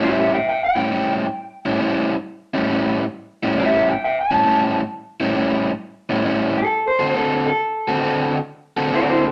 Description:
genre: blues.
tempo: 135 BPM.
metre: 4/4.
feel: swing 67% on 8ths.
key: A mixolydian.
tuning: A4 = 437 Hz.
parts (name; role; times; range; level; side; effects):
electric guitar through a small old amp; melody; 0.0-9.3 s; C4 to A5; -21 LUFS; equal; none.
overdriven semi-hollow guitar; riff; 0.0-9.3 s; A2 to A4; -22 LUFS; equal; none.
room: moderate studio reverb, RT60 0.7 s.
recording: lossy compression artefacts.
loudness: -20 LUFS.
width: mono.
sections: 0.0-9.3 A section.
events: none.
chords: 0.0 A7; 6.7 D7.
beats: 0.01 0.46 0.90 | 1.34 1.79 2.24 2.68 | 3.13 3.57 4.02 4.46 | 4.91 5.35 5.80 6.24 | 6.69 7.13 7.58 8.02 | 8.47 8.91.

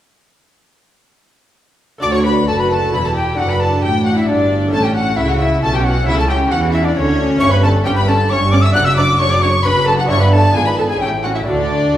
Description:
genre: classical, baroque-style concerto movement with solo episodes.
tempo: 133 BPM.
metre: 3/4.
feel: straight.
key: D major.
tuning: A4 = 438 Hz.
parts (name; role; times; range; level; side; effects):
alto recorder; melody; 2.0-12.0 s; C#5 to F#6; -19 LUFS; left 1 dB; none.
rich chamber violin section; melody; 2.0-12.0 s; C#5 to F#6; -22 LUFS; left 3 dB; none.
warm chamber violin section; second line; 2.0-12.0 s; C#4 to F#5; -21 LUFS; left 1 dB; none.
lute; accompaniment; 2.0-12.0 s; D2 to F#4; -24 LUFS; right 1 dB; none.
warm chamber viola section; accompaniment; 2.0-12.0 s; B3 to F#4; -23 LUFS; right 1 dB; none.
warm chamber cello section; bass; 2.0-12.0 s; D2 to E3; -19 LUFS; right 1 dB; none.
warm chamber double bass section; bass; 2.0-12.0 s; E1 to E2; -19 LUFS; right 1 dB; none.
room: wet recital hall reverb, RT60 1.5 s.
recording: heard from further back in the room.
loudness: -12 LUFS.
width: side -12 dB against mid.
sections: 2.0-12.0 A section.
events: none.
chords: 2.0 D; 3.4 D/F#; 4.7 A; 6.1 A/C#; 7.4 A7/G; 8.8 D/F#; 10.1 Em7/G; 10.6 G#dim7; 11.0 A7; 11.5 D.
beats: | 2.02 2.48 2.93 | 3.38 3.83 4.28 | 4.73 5.18 5.62 | 6.07 6.51 6.96 | 7.41 7.86 8.30 | 8.75 9.20 9.65 | 10.10 10.55 11.01 | 11.47 11.93.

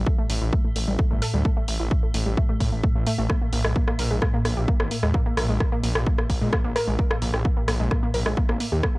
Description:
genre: driving peak-time techno.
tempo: 130 BPM.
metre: 4/4.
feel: straight.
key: unclear.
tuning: A4 = 444 Hz.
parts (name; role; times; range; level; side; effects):
detuned saw bass; bass; 0.0-8.8 s; G1 to Bb2; -25 LUFS; equal; sidechain pumping.
swarming drone; drone; 0.0-9.0 s; A2; -31 LUFS; equal; built-in reverb, sidechain pumping.
wide unison pluck; riff; 0.1-9.0 s; G3 to Bb4; -29 LUFS; equal; tube saturation, sidechain pumping, analog delay.
electronic kick drum; drums; 0.1-8.9 s; none; -22 LUFS; equal; overdrive.
punchy analog drum machine; drums; 0.3-8.9 s; hi-hat, rim click; -29 LUFS; equal; sidechain pumping on hats.
room: little or no reverb.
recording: dry, gritty hardware recording.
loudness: -20 LUFS.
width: side -22 dB against mid.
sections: 0.0-9.0 A section.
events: none.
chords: 0.0 A5; 3.3 Gmadd9 (rootless).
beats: 0.07 0.53 0.99 | 1.45 1.91 2.37 2.83 | 3.30 3.76 4.22 4.68 | 5.14 5.60 6.07 6.53 | 6.99 7.45 7.91 8.37 | 8.84.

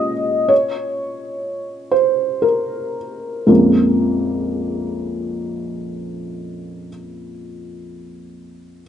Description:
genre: neoclassical minimalist piano.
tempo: 56-66 BPM.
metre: 3/4.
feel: rubato.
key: Bb minor.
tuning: A4 = 440 Hz.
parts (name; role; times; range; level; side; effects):
felt-muted upright piano; solo; 0.0-8.8 s; Bb1 to Eb5; -18 LUFS; equal; none.
room: light reverb, small room reverb.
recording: rough home demo mix, nothing above 10.6 kHz.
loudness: -16 LUFS.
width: side -9 dB against mid.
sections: 0.0-3.5 A section; 3.5-6.6 B section.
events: slowing down 0.0-3.5.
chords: 0.0 Bbm7.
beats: | 0.50 1.44 2.44 | 3.49 4.53 5.58.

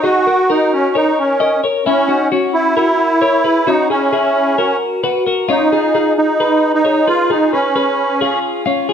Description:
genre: indie pop.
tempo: 132 BPM.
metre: 4/4.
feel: straight.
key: unclear.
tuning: A4 = 440 Hz.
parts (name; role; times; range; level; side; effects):
musette accordion; melody; 0.0-8.4 s; C#4 to F#4; -14 LUFS; right 2 dB; plate reverb.
twelve-string electric guitar; arpeggios; 0.0-8.9 s; C#4 to D#5; -16 LUFS; left 3 dB; none.
room: moderate large studio reverb, RT60 0.9 s.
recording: none.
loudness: -12 LUFS.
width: side -8 dB against mid.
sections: 0.0-8.9 A section.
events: none.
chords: 0.0 D#m7; 1.6 F#7; 5.5 C#7.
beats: | 0.04 0.49 0.94 1.40 | 1.85 2.31 2.76 3.21 | 3.67 4.12 4.58 5.03 | 5.48 5.94 6.39 6.84 | 7.30 7.75 8.21 8.66.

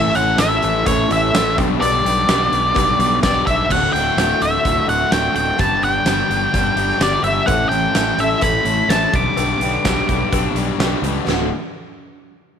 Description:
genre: classic rock.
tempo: 127 BPM.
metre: 4/4.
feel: straight.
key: D major.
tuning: A4 = 438 Hz.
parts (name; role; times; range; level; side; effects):
octave-fuzz lead guitar; melody; 0.0-10.8 s; C#5 to D6; -18 LUFS; equal; distortion, tape echo.
picked steel-string acoustic guitar; accompaniment; 0.0-11.5 s; A2 to C#5; -26 LUFS; right 15 dB; none.
crunchy overdriven guitar; riff; 0.0-11.5 s; D2 to A4; -22 LUFS; left 12 dB; none.
fuzz fingered electric bass; bass; 0.0-11.5 s; D1 to C#2; -23 LUFS; right 1 dB; overdrive.
huge arena drum kit; drums; 0.1-11.4 s; crash cymbal, hi-hat, kick drum, snare drum, splash cymbal, tambourine; -22 LUFS; right 1 dB; none.
cowbell; percussion; 0.4-3.3, 7.5-11.5 s; none; -31 LUFS; left 14 dB; none.
room: light reverb, studio ambience.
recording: 1960s-style stereo with parts hard left and right.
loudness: -14 LUFS.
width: side -8 dB against mid.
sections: 0.0-3.7 A section; 3.7-11.3 B section; 11.3-12.6 C section.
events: none.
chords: 0.0 A; 1.6 G/B; 3.7 D; 5.6 G; 7.5 A; 9.1 G/B; 11.3 D.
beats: 0.40 0.87 1.34 | 1.82 2.29 2.76 3.23 | 3.71 4.18 4.65 5.12 | 5.60 6.07 6.54 7.01 | 7.49 7.96 8.44 8.91 | 9.38 9.86 10.33 10.80 | 11.28.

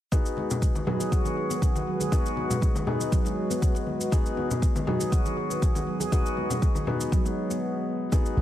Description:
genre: afro house.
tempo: 120 BPM.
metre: 4/4.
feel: swing 53% on 16ths.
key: G# minor pentatonic.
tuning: A4 = 440 Hz.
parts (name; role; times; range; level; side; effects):
dark analog pad; sustained chords; 0.1-8.4 s; G#3 to G#5; -37 LUFS; right 2 dB; chorus, sidechain pumping.
felt-muted upright piano; stabs; 0.1-8.4 s; B3 to G#4; -32 LUFS; left 3 dB; sidechain pumping, low-pass filter, dub echo.
electronic kick drum; drums; 0.1-8.2 s; none; -24 LUFS; equal; small room ambience.
shaker; drums; 0.1-8.3 s; none; -39 LUFS; equal; small room ambience.
congas; percussion; 0.1-8.4 s; none; -33 LUFS; left 2 dB; none.
handpan; arpeggios; 0.4-8.4 s; D#3 to G#4; -30 LUFS; right 1 dB; sidechain pumping, low-pass filter, dub echo.
warm 808-style bass; bass; 8.4 s; G#1; -21 LUFS; equal; sidechain pumping.
room: little or no reverb.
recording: none.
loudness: -24 LUFS.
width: side -12 dB against mid.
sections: 0.1-8.1 A section.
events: break 7.6-8.1.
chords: 0.1 G#m7.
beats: | 0.12 0.62 1.12 1.62 | 2.12 2.62 3.12 3.62 | 4.12 4.62 5.12 5.62 | 6.12 6.62 7.12 7.62 | 8.12.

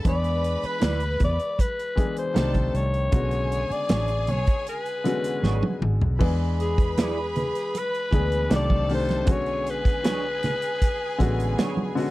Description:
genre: lush 1970s-style soul.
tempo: 78 BPM.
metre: 4/4.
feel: straight.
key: B dorian.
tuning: A4 = 440 Hz.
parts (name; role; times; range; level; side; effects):
bright studio violin section; second line; 0.0-12.1 s; G#4 to B5; -35 LUFS; right 2 dB; none.
warm baby grand piano; accompaniment; 0.0-12.1 s; C#3 to G#4; -30 LUFS; left 3 dB; none.
modern studio drum kit; drums; 0.0-12.1 s; crash cymbal, hi-hat, kick drum, snare drum, toms; -24 LUFS; equal; none.
growling alto saxophone; melody; 0.1-12.0 s; G#4 to D5; -28 LUFS; left 2 dB; none.
vintage muted fingered electric bass; bass; 0.1-11.5 s; G#1 to E2; -26 LUFS; equal; none.
congas; percussion; 0.1-12.0 s; none; -30 LUFS; right 2 dB; none.
electric guitar through a small old amp; riff; 0.8-11.8 s; D4 to D5; -32 LUFS; right 5 dB; analog chorus.
room: little or no reverb.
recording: dry, close 1970s-style studio recording.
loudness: -22 LUFS.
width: side -18 dB against mid.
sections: 0.0-6.2 A section; 6.2-12.1 B section.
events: drum fill 5.4-6.2.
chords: 0.0 E7; 2.4 Cm69; 3.1 Bm69; 6.2 E7; 8.5 Cm69; 9.3 Bm69.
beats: | 0.05 0.82 1.59 2.36 | 3.13 3.90 4.67 5.44 | 6.21 6.98 7.75 8.52 | 9.28 10.05 10.82 11.59.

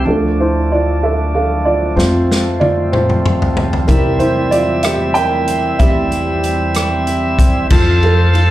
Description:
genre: six-eight pop ballad.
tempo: 63 BPM (dotted quarters).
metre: 6/8.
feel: straight.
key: F major.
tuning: A4 = 440 Hz.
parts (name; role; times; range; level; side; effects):
dark upright piano; accompaniment; 0.0-8.5 s; C3 to G5; -16 LUFS; right 1 dB; plate reverb.
bright tonewheel organ; sustained chords; 0.0-8.5 s; F3 to A5; -19 LUFS; right 1 dB; lush chorus.
upright bass; bass; 0.1-8.5 s; D2 to F2; -18 LUFS; equal; none.
natural country drum kit; drums; 2.0-8.5 s; crash cymbal, hi-hat, kick drum, ride cymbal, rim click, snare drum, toms; -16 LUFS; equal; none.
picked steel-string acoustic guitar; arpeggios; 3.9-8.5 s; F3 to A4; -25 LUFS; left 2 dB; tape echo, plate reverb, slapback echo.
room: moderate club reverb, RT60 0.7 s.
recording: live gig heard through the venue's PA, club reverb.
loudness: -12 LUFS.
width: side -14 dB against mid.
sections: 0.1-7.7 A section.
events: upright piano solo 0.1-7.7; drum fill 2.0-3.9.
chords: 0.1 Dm; 2.0 F; 3.9 C/E; 7.7 F.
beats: | 0.06 1.02 | 1.97 2.93 | 3.89 4.84 | 5.80 6.75 | 7.71.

